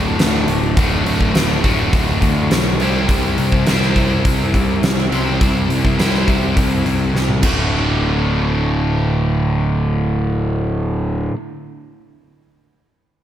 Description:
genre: classic rock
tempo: 104 BPM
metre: 4/4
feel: straight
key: D mixolydian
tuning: A4 = 440 Hz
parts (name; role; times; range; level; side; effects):
- cranked stack guitar; riff; 0.0-11.4 s; D2 to C5; -18 LUFS; equal; overdrive, slapback echo
- fuzz picked electric bass; bass; 0.0-11.3 s; D1 to D2; -19 LUFS; equal; overdrive
- huge arena drum kit; drums; 0.2-7.6 s; crash cymbal, hi-hat, kick drum, snare drum, toms; -18 LUFS; equal; none
room: moderate lush hall reverb, RT60 1.9 s, small room ambience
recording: big arena sound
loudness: -14 LUFS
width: side -11 dB against mid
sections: 0.0-7.7 A section; 7.7-10.0 B section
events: drum fill 7.1-7.7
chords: 0.0 D; 2.8 C; 7.4 D

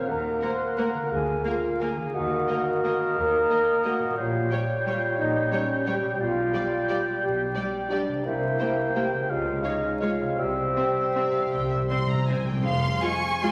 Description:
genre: classical, orchestral ballroom waltz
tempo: 151-193 BPM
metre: 3/4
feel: rubato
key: unclear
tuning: A4 = 437 Hz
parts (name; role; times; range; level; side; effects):
- mellow clarinet; second line; 0.0-12.4 s; Bb4 to D5; -35 LUFS; equal; none
- mellow concert flute; second line; 0.0-12.3 s; C5 to C6; -38 LUFS; equal; none
- mellow oboe; second line; 0.0-12.4 s; Eb5 to G5; -34 LUFS; equal; none
- dark bassoon; accompaniment; 0.0-12.5 s; G3 to Bb3; -35 LUFS; equal; none
- warm French horn section; sustained chords; 0.0-12.3 s; Db4 to C5; -31 LUFS; equal; none
- concert harp; arpeggios; 0.0-13.5 s; Bb2 to F5; -40 LUFS; equal; none
- rich symphonic cello section; bass; 0.1-13.0 s; F2 to Eb3; -42 LUFS; equal; none
- rich symphonic double bass section; bass; 0.1-13.0 s; F1 to Eb2; -38 LUFS; equal; none
- rich symphonic violin section; melody; 0.4-13.5 s; C5 to Db6; -38 LUFS; equal; none
- warm symphonic violin section; second line; 0.4-13.5 s; Bb4 to Ab5; -38 LUFS; equal; none
- rich symphonic viola section; accompaniment; 0.4-13.5 s; G3 to F4; -36 LUFS; equal; none
- timpani; percussion; 10.4-12.7 s; C3; -31 LUFS; equal; none
- mellow tuba; bass; 12.7-13.0 s; F1; -42 LUFS; equal; none
room: wet scoring stage reverb, RT60 1.5 s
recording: vinyl crackle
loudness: -26 LUFS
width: mono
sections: 0.0-12.7 A section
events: timpani fill 10.4-12.7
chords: 0.1 Ebm; 1.1 Bb7/D; 2.1 Ebm; 4.2 Gdim/Bb; 6.2 G7/B; 8.3 C7; 9.3 Db; 10.4 C; 12.7 Fm

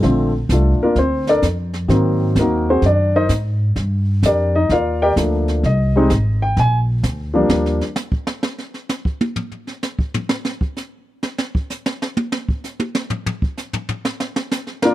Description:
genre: jazz piano trio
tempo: 128 BPM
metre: 4/4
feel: swing 67% on 8ths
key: Bb major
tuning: A4 = 443 Hz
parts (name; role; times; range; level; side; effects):
- warm upright piano; melody; 0.0-7.8, 14.8-14.9 s; D3 to Ab5; -16 LUFS; left 1 dB; none
- upright bass; bass; 0.0-7.8 s; Ab1 to Ab2; -18 LUFS; equal; none
- jazz brush drum kit; drums; 0.0-14.9 s; brushed snare drum, hi-hat, kick drum, snare drum, toms; -22 LUFS; right 1 dB; none
room: small room ambience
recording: dry, close 1970s-style studio recording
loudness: -16 LUFS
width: side -15 dB against mid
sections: 0.0-14.9 A section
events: upright piano solo 0.0-14.9; drum solo 7.5-14.9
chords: 0.0 Bbmaj7; 1.9 Ab9; 3.8 Gm7; 5.6 Abmaj7; 6.6 Bb; 7.5 N.C.

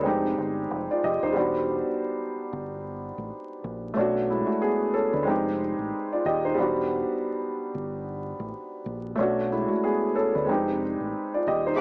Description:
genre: hip hop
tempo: 92 BPM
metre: 4/4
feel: swing 58% on 16ths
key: unclear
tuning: A4 = 440 Hz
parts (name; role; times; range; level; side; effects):
- dark grand piano; accompaniment; 0.0-11.8 s; G3 to Eb5; -24 LUFS; equal; high-pass filter, low-pass filter
- deep dub fingered electric bass; bass; 0.0-11.8 s; Eb1 to D2; -34 LUFS; equal; transformer saturation
room: light reverb, studio ambience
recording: dry, gritty hardware recording, vinyl crackle, small speaker sound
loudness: -24 LUFS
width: side -28 dB against mid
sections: 0.0-1.4 A section; 1.4-11.8 A section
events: none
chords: 0.1 Fm9; 1.4 Em9; 4.0 Bm9; 5.3 Fm9; 6.6 Em9; 9.2 Bm9; 10.5 Fm9

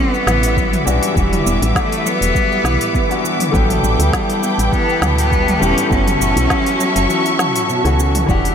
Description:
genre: organic downtempo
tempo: 101 BPM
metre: 4/4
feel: swing 54% on 16ths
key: E dorian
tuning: A4 = 441 Hz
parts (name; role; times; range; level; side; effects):
- bright cello; melody; 0.0-8.5 s; G3 to G4; -19 LUFS; left 1 dB; ping-pong delay
- felt-muted upright piano; accompaniment; 0.0-8.5 s; D3 to G5; -24 LUFS; left 4 dB; sidechain pumping, diffuse ambient delay
- dark studio string section; sustained chords; 0.0-8.5 s; G3 to D6; -22 LUFS; equal; sidechain pumping
- handpan; arpeggios; 0.0-8.5 s; B2 to B3; -22 LUFS; equal; diffuse ambient delay
- drifting glass-harmonics texture; texture; 0.0-8.3 s; E4 to E5; -29 LUFS; right 1 dB; chorus, built-in reverb
- organic electronic drum kit; drums; 0.1-8.5 s; cabasa, hi-hat, snare drum, toms; -23 LUFS; right 1 dB; none
- woody FM bass; bass; 0.3-8.5 s; E1 to D2; -18 LUFS; equal; sidechain pumping
- electronic kick drum; drums; 0.6-8.4 s; none; -20 LUFS; equal; none
room: moderate huge ambient reverb, RT60 7.6 s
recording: dreamy mix soaked in reverb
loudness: -13 LUFS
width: side -8 dB against mid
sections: 0.0-8.3 A section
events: kick drops out 7.1-8.3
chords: 0.0 Em9; 5.9 F#m7

